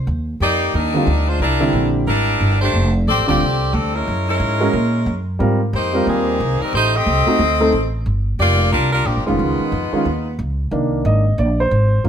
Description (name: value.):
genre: jazz, big band swing.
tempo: 180 BPM.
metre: 4/4.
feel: swing 62% on 8ths.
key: C minor.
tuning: A4 = 441 Hz.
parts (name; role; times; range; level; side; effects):
upright bass; bass; 0.0-12.1 s; D1 to A#2; -19 LUFS; equal; none.
bright saxophone section; melody; 0.4-10.3 s; Eb3 to Eb5; -19 LUFS; left 1 dB; none.
warm grand piano; accompaniment; 0.9-12.1 s; D3 to Eb5; -19 LUFS; right 1 dB; none.
room: light reverb.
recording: none.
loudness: -15 LUFS.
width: side -8 dB against mid.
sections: 0.1-10.7 A section; 10.7-12.1 B section.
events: grand piano solo 10.7-12.1.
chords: 0.1 Ebmaj7; 1.4 C9; 2.7 F69; 4.1 F#9; 5.4 Abmaj9; 6.7 Am7b5; 7.4 D5; 8.1 Gm7; 9.4 Db9; 10.7 Cm9.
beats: | 0.07 0.41 0.74 1.07 | 1.41 1.74 2.07 2.40 | 2.74 3.07 3.40 3.74 | 4.07 4.40 4.74 5.07 | 5.40 5.73 6.07 6.40 | 6.73 7.06 7.40 7.73 | 8.06 8.39 8.72 9.06 | 9.39 9.72 10.05 10.39 | 10.72 11.05 11.38 11.72 | 12.05.